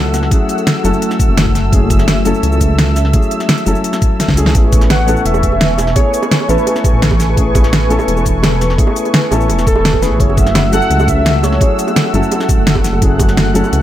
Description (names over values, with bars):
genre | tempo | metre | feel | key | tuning
liquid drum and bass | 170 BPM | 4/4 | straight | F# minor | A4 = 443 Hz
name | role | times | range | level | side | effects
dark concert grand piano | accompaniment | 0.0-13.8 s | F#3 to A4 | -18 LUFS | left 1 dB | dub echo
warm analog pad | sustained chords | 0.0-13.8 s | A3 to F#6 | -20 LUFS | left 1 dB | chorus, sidechain pumping
dark detuned saw bass | bass | 0.0-13.8 s | E1 to C#2 | -15 LUFS | equal | none
pop drum kit | drums | 0.1-13.8 s | hi-hat, shaker, snare drum | -16 LUFS | equal | none
electronic kick drum | drums | 0.3-13.3 s | none | -13 LUFS | equal | none
bongos | percussion | 4.6-13.7 s | none | -24 LUFS | right 6 dB | none
warm velvety synth lead | melody | 4.9-6.8, 9.7-11.8 s | A4 to F#5 | -18 LUFS | right 1 dB | chorus, digital delay
room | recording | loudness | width
digital ambience | none | -10 LUFS | side -12 dB against mid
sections
0.0-13.8 A section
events
drum fill 4.2-4.5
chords
0.0 F#m7; 4.5 Amaj9; 10.2 F#m7